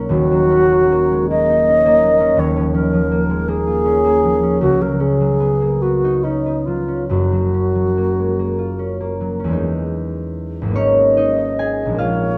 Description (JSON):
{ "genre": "classical, impressionist duo for alto flute and harp", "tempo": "46-57 BPM (dotted quarters)", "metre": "6/8", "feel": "rubato", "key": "F# major", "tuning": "A4 = 439 Hz", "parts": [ { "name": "concert harp", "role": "accompaniment", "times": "0.0-12.4 s", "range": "D#1 to G#5", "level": "-20 LUFS", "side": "equal", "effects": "none" }, { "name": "mellow wooden-headed alto flute", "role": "melody", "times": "0.1-12.4 s", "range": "D#4 to D#5", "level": "-19 LUFS", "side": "equal", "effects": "none" } ], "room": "moderate recital hall reverb, RT60 1.4 s", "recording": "close, detailed microphones", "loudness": "-17 LUFS", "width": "mono", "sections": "0.0-9.6 A section; 9.6-12.4 B section", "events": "none", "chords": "0.1 D#m7; 2.4 A#m7/D#; 4.6 C#9sus4; 7.1 F#maj7; 9.6 Emaj7; 10.8 G#m9", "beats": "| 0.11 1.30 | 2.39 3.47 | 4.61 5.81 | 7.08 8.36 | 9.57 10.76 | 11.99" }